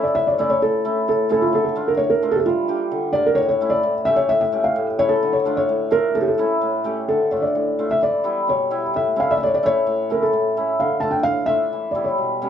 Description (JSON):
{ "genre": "klezmer", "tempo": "130 BPM", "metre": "2/4", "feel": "straight", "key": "unclear", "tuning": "A4 = 440 Hz", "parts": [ { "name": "felt-muted upright piano", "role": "melody", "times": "0.0-12.4 s", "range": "F4 to A5", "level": "-19 LUFS", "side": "equal", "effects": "none" }, { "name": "hammered dulcimer", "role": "accompaniment", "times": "0.0-12.5 s", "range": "A2 to G4", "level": "-22 LUFS", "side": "equal", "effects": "none" } ], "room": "moderate studio reverb, RT60 0.5 s", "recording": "dark, warm production", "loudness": "-17 LUFS", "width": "side -9 dB against mid", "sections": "0.0-7.1 A section; 7.1-12.5 B section", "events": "none", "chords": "0.0 A; 1.5 Dm; 2.5 Gm; 3.4 A; 5.2 Dm; 6.2 A; 7.1 Dm; 8.0 Em; 8.9 A; 10.8 Dm; 11.7 Em" }